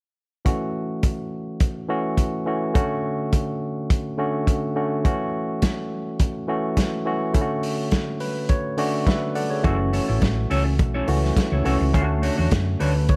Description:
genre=disco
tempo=104 BPM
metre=4/4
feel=straight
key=unclear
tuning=A4 = 440 Hz
part: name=barky tine electric piano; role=accompaniment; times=0.4-13.2 s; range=D3 to F#5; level=-27 LUFS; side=equal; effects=overdrive
part: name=vintage drum kit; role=drums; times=0.5-13.2 s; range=hi-hat, kick drum, snare drum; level=-25 LUFS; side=equal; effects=none
part: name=mellow electric guitar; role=accompaniment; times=9.6-13.1 s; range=A3 to C#5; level=-30 LUFS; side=equal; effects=vibrato effect
part: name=hollow-body short-scale fingered electric bass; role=bass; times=9.6-13.1 s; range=F#1 to F#2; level=-24 LUFS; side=equal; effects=none
room=light reverb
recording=none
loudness=-23 LUFS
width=mono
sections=0.5-13.2 A section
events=tine electric piano fill 7.9-9.6, 12.5-13.2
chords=0.5 F#m7; 2.8 Dmaj7; 5.0 F#m7; 7.3 Dmaj7; 9.6 F#m7; 11.9 Dmaj7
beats=| 0.46 1.03 1.60 2.18 | 2.75 3.33 3.90 4.47 | 5.05 5.62 6.20 6.77 | 7.35 7.92 8.49 9.07 | 9.64 10.22 10.79 11.37 | 11.94 12.52 13.09

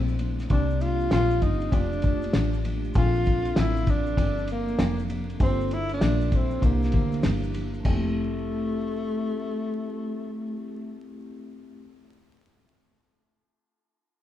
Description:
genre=hip hop, jazz-hop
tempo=98 BPM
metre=4/4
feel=swing 65% on 16ths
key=F major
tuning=A4 = 440 Hz
part: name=breathy tenor saxophone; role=melody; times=0.0-11.1 s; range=A3 to F4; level=-29 LUFS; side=equal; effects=tape echo
part: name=vibraphone with soft mallets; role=accompaniment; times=0.0-11.8 s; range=F3 to A4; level=-33 LUFS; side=equal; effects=none
part: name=deep dub fingered electric bass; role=bass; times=0.0-11.8 s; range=F1 to D2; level=-26 LUFS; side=left 1 dB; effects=none
part: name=maracas and congas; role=percussion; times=0.1-8.1 s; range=none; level=-42 LUFS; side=left 4 dB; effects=none
part: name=cloth-damped thuddy drum kit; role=drums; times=0.2-8.0 s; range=crash cymbal, hi-hat, kick drum, ride cymbal, snare drum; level=-27 LUFS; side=left 1 dB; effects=none
room=light reverb, studio reverb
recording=rough home demo mix, vinyl crackle, small room ambience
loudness=-23 LUFS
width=side -12 dB against mid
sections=0.0-7.9 A section; 7.9-10.3 B section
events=none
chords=0.0 Dsus2; 0.5 Csus2; 1.7 F69; 3.0 Bbmaj9; 5.4 Gm7; 6.6 C9; 7.9 Fmaj7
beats=| 0.50 1.12 1.73 2.34 | 2.95 3.56 4.18 4.79 | 5.40 6.01 6.63 7.24 | 7.85 8.46 9.08 9.69

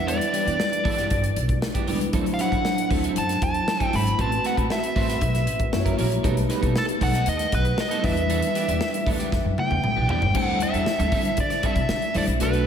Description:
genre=polished 1980s jazz-funk pop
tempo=117 BPM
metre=4/4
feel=straight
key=unclear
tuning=A4 = 440 Hz
part: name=nasal lead guitar with a parked wah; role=melody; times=0.0-12.7 s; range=A4 to B5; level=-26 LUFS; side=equal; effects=overdrive, analog delay
part: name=mellow tine electric piano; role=accompaniment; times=0.0-12.7 s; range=F#3 to C#5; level=-28 LUFS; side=left 1 dB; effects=medium stereo tremolo, wide subtle chorus
part: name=upright bass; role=bass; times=0.0-12.7 s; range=F#1 to D3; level=-26 LUFS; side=equal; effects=tube saturation
part: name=electric guitar at the edge of break-up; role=riff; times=0.1-12.6 s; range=E3 to C5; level=-31 LUFS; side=right 4 dB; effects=analog chorus
part: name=modern studio drum kit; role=drums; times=0.1-12.7 s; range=crash cymbal, hi-hat, kick drum, snare drum, toms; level=-27 LUFS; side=equal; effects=none
room=wet lush hall reverb, RT60 2.0 s, small room reverb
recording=dreamy mix soaked in reverb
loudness=-20 LUFS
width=side -8 dB against mid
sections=0.0-10.3 A section; 10.3-12.7 B section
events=drum fill 9.3-10.3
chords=0.0 Em7; 2.1 D9; 4.2 Am69; 5.7 F#7; 6.2 B7b13; 8.0 Em7; 10.3 D9sus4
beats=| 0.08 0.59 1.10 1.62 | 2.13 2.65 3.16 3.67 | 4.19 4.70 5.21 5.73 | 6.24 6.75 7.27 7.78 | 8.30 8.81 9.32 9.84 | 10.35 10.86 11.38 11.89 | 12.40

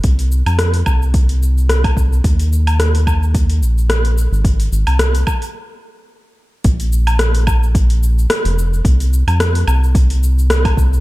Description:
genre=organic downtempo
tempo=109 BPM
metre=4/4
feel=swing 55% on 16ths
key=unclear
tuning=A4 = 436 Hz
part: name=round analog bass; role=bass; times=0.0-11.0 s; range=F1 to F2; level=-14 LUFS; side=equal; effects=sidechain pumping
part: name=deep house drum kit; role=drums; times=0.0-11.0 s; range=hi-hat, rim click, shaker, woodblock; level=-20 LUFS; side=equal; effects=overdrive
part: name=electronic kick drum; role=drums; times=0.0-10.9 s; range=none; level=-15 LUFS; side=equal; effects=overdrive
room=little or no reverb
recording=dark, warm production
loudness=-12 LUFS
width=side -18 dB against mid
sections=0.0-6.6 A section; 6.6-11.0 B section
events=stop 5.5-6.6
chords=none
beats=| 0.04 0.59 1.14 1.69 | 2.24 2.79 3.34 3.89 | 4.45 5.00 5.55 6.10 | 6.65 7.20 7.75 8.30 | 8.85 9.40 9.95 10.50

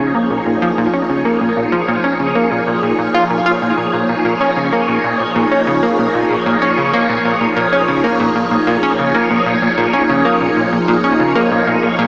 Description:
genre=ambient, sequencer-driven space music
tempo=95 BPM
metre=4/4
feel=straight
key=Bb minor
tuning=A4 = 441 Hz
part: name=phased string machine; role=sustained chords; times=0.0-12.1 s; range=F3 to Db5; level=-15 LUFS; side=equal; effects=ensemble chorus, phaser
part: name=plucky analog bass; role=riff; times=0.0-12.1 s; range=Bb2 to F4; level=-15 LUFS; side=equal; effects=wide subtle chorus, tape echo
part: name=warm sub bass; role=bass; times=0.0-12.1 s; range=Bb1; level=-36 LUFS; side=equal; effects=none
room=wet plate reverb, RT60 2.6 s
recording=echo-heavy mix, small speaker sound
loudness=-12 LUFS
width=side -36 dB against mid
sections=0.0-12.1 A section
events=none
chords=0.0 Bbm7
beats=0.62 | 1.25 1.88 2.51 3.15 | 3.78 4.41 5.04 5.67 | 6.30 6.93 7.57 8.20 | 8.83 9.46 10.09 10.72 | 11.36 11.99

